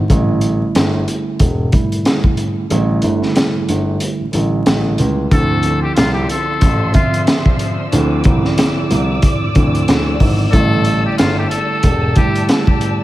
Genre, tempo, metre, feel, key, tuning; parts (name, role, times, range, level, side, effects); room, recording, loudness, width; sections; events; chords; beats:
hip hop, boom-bap hip-hop; 92 BPM; 4/4; swing 58% on 16ths; D minor; A4 = 439 Hz
mellow tine electric piano; accompaniment; 0.0-13.0 s; D3 to E5; -19 LUFS; right 2 dB; slow stereo tremolo, cassette tape, high-pass filter, low-pass filter
dark baby grand piano; bass; 0.0-12.1 s; E1 to D2; -17 LUFS; equal
crunchy breakbeat drum kit; drums; 0.1-13.0 s; hi-hat, kick drum, snare drum; -16 LUFS; equal
trumpet with metal mute; melody; 5.3-12.5 s; F4 to A4; -21 LUFS; left 2 dB; high-pass filter, low-pass filter, ping-pong delay
warm studio string section; sustained chords; 5.3-13.0 s; F3 to E6; -25 LUFS; equal; high-pass filter, low-pass filter
light reverb, studio ambience; vinyl crackle; -12 LUFS; side -15 dB against mid
0.0-5.3 A section; 5.3-13.0 B section
kick muted 2.7-5.3
0.1 A7sus4; 5.3 Dm9; 10.5 A7sus4
| 0.10 0.75 1.40 2.05 | 2.70 3.36 4.01 4.66 | 5.31 5.96 6.62 7.27 | 7.92 8.57 9.23 9.88 | 10.53 11.18 11.84 12.49